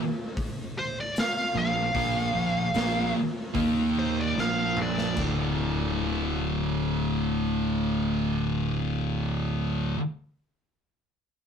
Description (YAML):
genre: stoner and doom metal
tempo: 74 BPM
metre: 4/4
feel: straight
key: D phrygian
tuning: A4 = 440 Hz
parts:
  - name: raw garage drum kit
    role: drums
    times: 0.4-5.4 s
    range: china cymbal, hi-hat, kick drum, snare drum, toms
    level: -33 LUFS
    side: left 1 dB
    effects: none
  - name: fuzz lead guitar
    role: melody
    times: 0.8-5.2 s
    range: C5 to F5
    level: -28 LUFS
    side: equal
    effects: distortion
  - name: thick fuzz guitar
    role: riff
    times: 1.5-10.0 s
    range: D2 to Eb4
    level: -30 LUFS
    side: left 6 dB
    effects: distortion
  - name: thick fuzz guitar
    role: riff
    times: 1.5-10.0 s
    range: D2 to Eb4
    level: -29 LUFS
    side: right 6 dB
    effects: distortion
  - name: overdriven fingered electric bass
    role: bass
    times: 1.5-9.9 s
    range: D1 to Eb2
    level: -33 LUFS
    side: left 1 dB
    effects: none
room: moderate studio ambience, RT60 0.5 s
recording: rough rehearsal-room recording, tube saturation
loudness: -25 LUFS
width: side -7 dB against mid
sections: 0.0-5.2 A section; 5.2-8.5 B section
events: slowing down 0.0-5.2; lead electric guitar solo 0.0-5.2; drum fill 4.4-5.2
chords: 0.0 Bb5; 3.6 Eb5; 4.4 Bb5; 5.2 D5